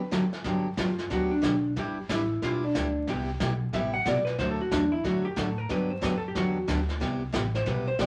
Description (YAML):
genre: country, western swing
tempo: 183 BPM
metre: 4/4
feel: swing 64% on 8ths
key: G major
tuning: A4 = 442 Hz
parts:
  - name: vintage hollow-body jazz guitar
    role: melody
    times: 0.0-8.1 s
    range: D4 to F#5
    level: -31 LUFS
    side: equal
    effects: none
  - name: picked steel-string acoustic guitar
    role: accompaniment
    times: 0.1-8.1 s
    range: C3 to B4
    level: -32 LUFS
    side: equal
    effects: none
  - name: vintage brush drum kit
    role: drums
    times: 0.1-8.1 s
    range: brushed snare drum, hi-hat, kick drum, snare drum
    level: -37 LUFS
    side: equal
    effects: none
  - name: upright bass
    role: bass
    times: 0.4-8.1 s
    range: G1 to A2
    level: -36 LUFS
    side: equal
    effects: none
room: moderate small room reverb, RT60 0.5 s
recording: vinyl crackle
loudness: -28 LUFS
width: mono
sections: 0.4-8.1 A section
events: break 0.0-0.4; hollow-body jazz guitar solo 0.4-8.1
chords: 0.4 Gmaj7; 1.8 Em7/G; 3.1 Cmaj7; 4.4 D; 5.7 Gmaj7; 7.0 Cmaj7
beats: 0.12 | 0.45 0.77 1.10 1.43 | 1.76 2.09 2.42 2.74 | 3.07 3.40 3.73 4.05 | 4.38 4.71 5.04 5.37 | 5.69 6.02 6.35 6.67 | 7.00 7.33 7.66 7.99